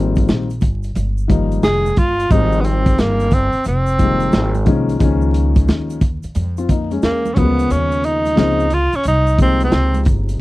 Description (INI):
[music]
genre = hip hop, jazz-hop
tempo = 89 BPM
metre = 4/4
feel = swing 65% on 16ths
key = unclear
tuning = A4 = 440 Hz
[part]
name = dark concert grand piano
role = accompaniment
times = 0.0-10.4 s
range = C3 to Bb4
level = -20 LUFS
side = left 4 dB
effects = none
[part]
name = upright bass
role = bass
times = 0.0-10.4 s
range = F1 to F2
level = -19 LUFS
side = equal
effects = none
[part]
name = crunchy breakbeat drum kit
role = drums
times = 0.2-10.4 s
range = hi-hat, kick drum, snare drum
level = -16 LUFS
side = equal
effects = none
[part]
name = congas and tube shaker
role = percussion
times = 0.2-10.4 s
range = none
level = -31 LUFS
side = right 7 dB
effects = none
[part]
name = breathy tenor saxophone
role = melody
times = 1.6-10.0 s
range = Bb3 to Ab4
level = -17 LUFS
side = right 1 dB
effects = none
[sound]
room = little or no reverb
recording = dry, close 1970s-style studio recording, vinyl crackle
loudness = -14 LUFS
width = side -18 dB against mid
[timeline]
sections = 0.0-10.4 A section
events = kick muted 7.7-9.1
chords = 0.0 Abmaj13 (rootless); 2.3 Fm9; 5.0 Db69; 7.0 E9; 7.7 Eb13sus4